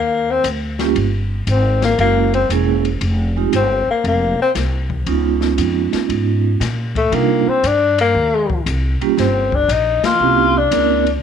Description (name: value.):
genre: jazz, small-group swing and bop.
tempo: 117 BPM.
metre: 4/4.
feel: swing 68% on 8ths.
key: C minor.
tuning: A4 = 440 Hz.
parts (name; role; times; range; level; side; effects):
mellow tenor saxophone; melody; 0.0-11.2 s; A3 to F4; -16 LUFS; left 4 dB; none.
upright bass; bass; 0.0-11.2 s; E1 to C3; -20 LUFS; equal; none.
open jazz drum kit; drums; 0.4-11.1 s; hi-hat, kick drum, ride cymbal, snare drum; -26 LUFS; left 5 dB; none.
vibraphone with medium mallets; accompaniment; 0.8-11.0 s; G3 to Bb4; -19 LUFS; right 14 dB; none.
room: light reverb, small room ambience.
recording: 1960s-style stereo.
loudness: -14 LUFS.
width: side -8 dB against mid.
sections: 0.0-11.2 A section.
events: band accent 9.9.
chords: 0.0 Abmaj7sus2 (rootless); 1.0 Gsus4; 2.0 F#9; 3.0 Fsus2; 5.1 Db9; 7.1 Cm11; 9.2 Gmadd11; 10.2 C7b9.